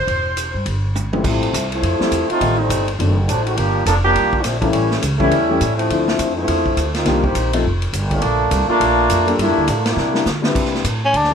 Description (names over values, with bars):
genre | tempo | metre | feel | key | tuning
jazz, big band swing | 206 BPM | 4/4 | swing 61% on 8ths | F major | A4 = 441 Hz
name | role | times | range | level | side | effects
clear saxophone section | melody | 0.0-0.9 s | C5 | -21 LUFS | right 1 dB | none
upright bass | bass | 0.0-11.3 s | E1 to D3 | -21 LUFS | right 1 dB | none
swinging big-band drum kit | drums | 0.1-11.3 s | crash cymbal, hi-hat, kick drum, ride cymbal, snare drum, toms | -24 LUFS | equal | none
clear trombone section | second line | 1.1-10.3 s | D3 to A4 | -18 LUFS | equal | none
warm upright piano | accompaniment | 1.1-11.3 s | F2 to B4 | -22 LUFS | left 4 dB | none
growling tenor saxophone | melody | 11.0-11.3 s | Db4 to D4 | -14 LUFS | left 1 dB | none
room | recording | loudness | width
light reverb | none | -15 LUFS | side -7 dB against mid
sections
0.0-1.2 A section; 1.2-10.6 B section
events
drum fill 1.0, 10.0-10.6; trombone section solo 1.2-10.6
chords
0.0 C; 1.2 Fmaj7; 2.4 Am7b5; 3.0 D7b9; 3.6 Gm9; 4.7 A7; 5.9 Dm9; 7.1 Cm7; 7.6 Fsus2; 8.2 Bbmaj7; 9.4 Gm9; 10.0 C9; 10.6 C69